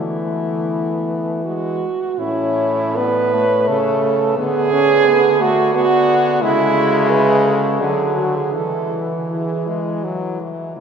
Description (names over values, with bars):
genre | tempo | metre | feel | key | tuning
classical, lyrical piece for horn quartet | 75-90 BPM | 3/4 | rubato | A major | A4 = 440 Hz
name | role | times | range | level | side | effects
mellow French horn | melody | 0.0-10.8 s | E4 to D5 | -25 LUFS | left 4 dB | none
clear French horn | second line | 0.0-10.8 s | B3 to B4 | -18 LUFS | right 4 dB | none
warm French horn | accompaniment | 0.0-10.8 s | E3 to C#4 | -22 LUFS | left 2 dB | none
clear French horn | bass | 0.0-10.8 s | A2 to E3 | -23 LUFS | equal | none
room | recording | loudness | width
wet cathedral reverb, RT60 5.2 s | heard from further back in the room | -15 LUFS | side -6 dB against mid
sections
0.0-2.2 A section; 2.2-10.8 B section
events
none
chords
0.0 Esus4; 1.4 E; 2.2 A; 4.4 Bm/D; 6.4 A/C#; 7.8 D; 8.5 E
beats
0.71 1.45 | 2.19 2.97 3.69 | 4.38 5.07 5.74 | 6.42 7.11 7.81 | 8.54 9.29 10.04 | 10.78